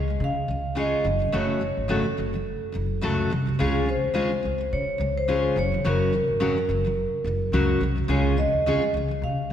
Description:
acoustic pop; 106 BPM; 4/4; swing 55% on 16ths; Db major; A4 = 440 Hz
picked steel-string acoustic guitar; accompaniment; 0.0-9.5 s; Gb2 to Bb4; -26 LUFS; left 1 dB
upright bass; bass; 0.0-9.5 s; Gb1 to Db3; -27 LUFS; equal
vibraphone with hard mallets; melody; 0.2-9.5 s; Ab4 to F5; -26 LUFS; right 1 dB
wet concert hall reverb, RT60 2.3 s; recorded in a church or concert hall; -22 LUFS; side -9 dB against mid
0.0-9.5 A section
0.0 Db; 1.1 Gbm; 3.6 Db; 5.6 Gb; 8.1 Db

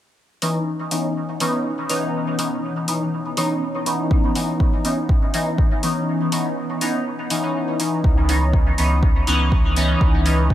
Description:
dub techno; 122 BPM; 4/4; straight; C# minor; A4 = 439 Hz
deep dark ambient pad; sustained chords; 2.0-10.5 s; E3 to D#5; -30 LUFS; right 1 dB; chorus, built-in reverb, sidechain pumping
resonant sweep polysynth; stabs; 0.4-10.4 s; E3 to D#4; -21 LUFS; left 1 dB; chorus, phaser, sidechain pumping, dub echo
electronic hi-hat; drums; 0.4-10.4 s; -27 LUFS; left 1 dB
electronic kick drum; drums; 4.1-10.5 s; -18 LUFS; equal
soft dub sub bass; bass; 8.0-10.5 s; C#2; -19 LUFS; equal; sidechain pumping
moderate echo chamber reverb, RT60 2.1 s; -18 LUFS; side -12 dB against mid
0.2-8.0 A section; 8.0-10.5 B section
break 6.1-8.0
0.2 C#m9; 8.0 G#m (rootless)

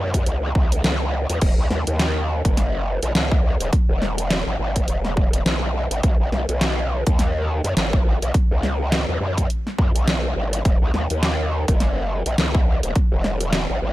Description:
glitch hop; 104 BPM; 4/4; swing 58% on 16ths; Eb phrygian; A4 = 440 Hz
growl bass; bass; 0.0-13.9 s; Eb1 to Gb2; -22 LUFS; equal; chorus, overdrive
dubstep drum kit; drums; 0.1-13.7 s; crash cymbal, hi-hat, snare drum; -25 LUFS; equal; overdrive
electronic kick drum; drums; 0.1-13.1 s; -19 LUFS; equal; overdrive
little or no reverb; dark, warm production; -18 LUFS; side -16 dB against mid
0.0-13.9 A section

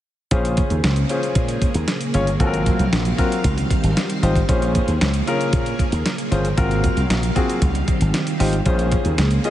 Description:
early-eighties boogie funk; 115 BPM; 4/4; straight; Bb minor; A4 = 440 Hz
warm grand piano; accompaniment; 0.3-9.5 s; C4 to Eb5; -24 LUFS; left 2 dB
string machine, full ensemble; sustained chords; 0.3-9.5 s; C3 to F5; -25 LUFS; right 1 dB; ensemble chorus
slap bass with an envelope filter; bass; 0.3-9.4 s; G1 to Bb2; -20 LUFS; equal
crisp 8-bit digital drum machine; drums; 0.3-9.5 s; hi-hat, kick drum, snare drum; -22 LUFS; equal
moderate huge ambient reverb, RT60 3.9 s; dreamy mix soaked in reverb, nothing above 10.9 kHz; -17 LUFS; side -12 dB against mid
0.3-9.5 A section
0.3 Bbm7; 2.4 Ab13; 3.4 Dbmaj9#11; 4.5 Bbm7; 6.6 Ab13; 7.6 Dbmaj9#11; 8.7 Bbm7

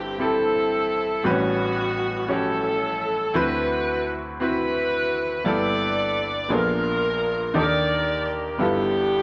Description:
gospel; 57 BPM (dotted quarters); 6/8; straight; G major; A4 = 441 Hz
mellow saxophone section; melody; 0.0-9.2 s; B3 to D5; -26 LUFS; equal
clear grand piano; accompaniment; 0.0-9.2 s; G1 to C#5; -27 LUFS; equal
moderate echo chamber reverb, RT60 2.2 s; -23 LUFS; mono
0.0-9.2 A section
0.0 C6/G; 1.3 A13; 3.4 D13; 5.5 G69; 6.5 Bb7b9; 7.6 Ebmaj7; 8.6 G13

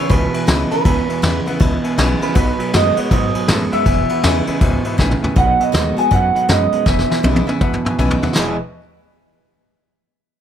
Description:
rockabilly; 160 BPM; 4/4; swing 63% on 8ths; E major; A4 = 440 Hz
electric guitar through a small old amp; melody; 0.0-8.0 s; B4 to G#5; -19 LUFS; right 2 dB; spring reverb, plate reverb, analog delay
bright upright piano; accompaniment; 0.0-8.6 s; B4 to B5; -28 LUFS; left 7 dB; plate reverb
picked steel-string acoustic guitar; accompaniment; 0.0-8.6 s; E2 to F#4; -25 LUFS; left 3 dB; plate reverb
electric guitar through a small old amp; riff; 0.0-8.6 s; E2 to G#4; -21 LUFS; right 5 dB
upright bass; bass; 0.1-8.6 s; E1 to A2; -20 LUFS; equal
vintage brush drum kit; drums; 0.1-8.5 s; hi-hat, kick drum, ride cymbal, snare drum, splash cymbal, toms; -18 LUFS; left 1 dB
light reverb; -14 LUFS; side -9 dB against mid
0.0-5.4 A section; 5.4-8.4 B section; 8.4-9.9 C section
drum fill 5.0-5.4, 6.9-8.4
0.0 E; 2.4 B7; 3.9 E; 5.4 B7; 6.9 E

